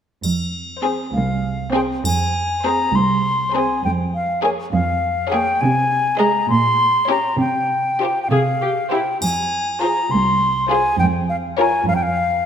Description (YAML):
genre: cinematic, playful, whimsical film cue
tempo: 67 BPM (dotted quarters)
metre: 6/8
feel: straight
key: F minor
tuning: A4 = 438 Hz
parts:
  - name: dark studio cello section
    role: bass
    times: 0.2-12.5 s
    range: C2 to C3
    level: -22 LUFS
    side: right 3 dB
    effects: none
  - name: triangle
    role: percussion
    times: 0.2-3.2, 9.2-10.4 s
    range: none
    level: -29 LUFS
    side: equal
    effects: none
  - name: rich studio violin section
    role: melody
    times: 0.8-11.8 s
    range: C5 to Eb5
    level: -29 LUFS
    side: left 6 dB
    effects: none
  - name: warm studio violin section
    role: second line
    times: 0.8-11.8 s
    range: G4 to Bb4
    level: -26 LUFS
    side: left 2 dB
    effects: none
  - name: warm studio viola section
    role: accompaniment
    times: 0.8-11.8 s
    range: Ab3 to Ab4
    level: -25 LUFS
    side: right 1 dB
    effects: none
  - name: concert flute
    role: second line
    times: 1.1-12.5 s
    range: F5 to C6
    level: -19 LUFS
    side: left 1 dB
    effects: none
room: wet scoring stage reverb, RT60 1.9 s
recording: none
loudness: -16 LUFS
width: side -8 dB against mid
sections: 0.2-2.0 A section; 2.0-12.5 B section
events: none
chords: 0.2 Fm; 3.8 Db6/F; 5.6 Ab/C; 6.5 Gdim/Bb; 7.4 Csus4; 8.3 C5; 9.2 Fm; 11.0 N.C.